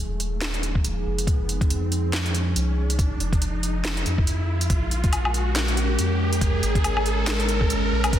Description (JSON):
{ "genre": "deep dubstep", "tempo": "140 BPM", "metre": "4/4", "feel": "swing 58% on 16ths, half-time", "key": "F minor", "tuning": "A4 = 442 Hz", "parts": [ { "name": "deep dark ambient pad", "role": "sustained chords", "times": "0.0-8.2 s", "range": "F3 to Bb4", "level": "-29 LUFS", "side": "equal", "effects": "chorus, built-in reverb" }, { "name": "soft dub sub bass", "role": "bass", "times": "0.0-8.2 s", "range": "Eb1 to F2", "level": "-25 LUFS", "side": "equal", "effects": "none" }, { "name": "riser", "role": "sound effects", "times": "0.0-8.2 s", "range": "none", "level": "-31 LUFS", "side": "right 1 dB", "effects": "none" }, { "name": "garage drum kit", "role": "drums", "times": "0.2-8.2 s", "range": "handclaps, hi-hat, snare drum, woodblock", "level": "-28 LUFS", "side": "equal", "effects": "soft clipping on snare" }, { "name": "electronic kick drum", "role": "drums", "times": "0.8-8.2 s", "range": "none", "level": "-23 LUFS", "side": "equal", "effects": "none" } ], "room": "light reverb", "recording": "dense, heavily limited modern master", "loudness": "-21 LUFS", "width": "side -11 dB against mid", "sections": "0.0-8.2 A section", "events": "build-up 0.0-8.2; riser 0.0-8.2", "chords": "0.0 Fm7; 4.7 Bbm7" }